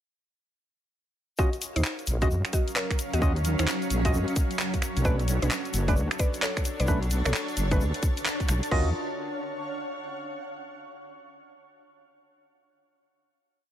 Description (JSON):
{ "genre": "UK garage, two-step garage", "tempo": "131 BPM", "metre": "4/4", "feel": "swing 63% on 16ths", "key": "unclear", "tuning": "A4 = 443 Hz", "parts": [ { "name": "mallet-like synth pluck", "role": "melody", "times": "1.4-8.9 s", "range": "D4 to Eb5", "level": "-34 LUFS", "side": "equal", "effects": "chorus, digital delay" }, { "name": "warm analog pad", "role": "sustained chords", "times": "1.4-8.9 s", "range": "D4 to F5", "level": "-41 LUFS", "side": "equal", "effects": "chorus, sidechain pumping" }, { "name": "percussive organ stab", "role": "stabs", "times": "1.4-8.9 s", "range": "A3 to Eb5", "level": "-35 LUFS", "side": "right 1 dB", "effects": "chorus, dub echo" }, { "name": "electronic kick drum", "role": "drums", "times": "1.4-8.8 s", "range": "none", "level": "-26 LUFS", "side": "equal", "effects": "studio reverb" }, { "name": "egg shaker", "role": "percussion", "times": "1.4-8.7 s", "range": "none", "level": "-40 LUFS", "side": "left 3 dB", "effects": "none" }, { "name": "granular cloud pad", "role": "texture", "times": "2.5-10.5 s", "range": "Gb3 to A5", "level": "-34 LUFS", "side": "equal", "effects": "built-in reverb, sidechain pumping" }, { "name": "garage drum kit", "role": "drums", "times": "1.5-8.8 s", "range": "crash cymbal, finger snaps, handclaps, hi-hat", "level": "-31 LUFS", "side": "equal", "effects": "studio reverb" }, { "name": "deep soft wobble bass", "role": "bass", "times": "1.8-8.9 s", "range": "F#1 to Gb2", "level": "-26 LUFS", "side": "equal", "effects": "chorus" } ], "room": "little or no reverb", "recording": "none", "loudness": "-24 LUFS", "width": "side -11 dB against mid", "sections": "1.4-8.7 drop; 8.7-10.5 final chord", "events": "drop 1.4-8.7; band accent 8.3", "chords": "1.4 Ebm9; 5.1 Bm9; 8.7 Ebm9" }